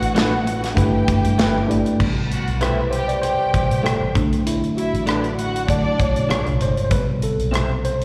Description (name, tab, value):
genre	lush 1970s-style soul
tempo	98 BPM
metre	4/4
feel	swing 54% on 16ths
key	A dorian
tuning	A4 = 441 Hz
part	warm studio violin section	second line	0.0-6.6 s	D4 to G5	-28 LUFS	equal	slapback echo
part	mellow tine electric piano	accompaniment	0.0-8.0 s	Bb2 to D5	-24 LUFS	equal	slapback echo
part	vintage muted fingered electric bass	bass	0.0-8.0 s	G1 to B2	-26 LUFS	equal	none
part	modern studio drum kit	drums	0.0-8.0 s	crash cymbal, hi-hat, kick drum, rim click, snare drum	-26 LUFS	equal	none
part	electric guitar through a small old amp	riff	0.1-7.7 s	A3 to Db5	-29 LUFS	equal	harmonic tremolo, slapback echo
room	light reverb, studio reverb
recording	live gig heard through the venue's PA, recital hall reverb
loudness	-20 LUFS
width	mono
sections	0.0-2.0 A section; 2.0-8.0 B section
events	tine electric piano solo 2.0-8.0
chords	0.0 E9sus4; 0.8 G69; 2.0 Am7; 4.2 Bm7; 6.3 Bbm7; 6.9 Am7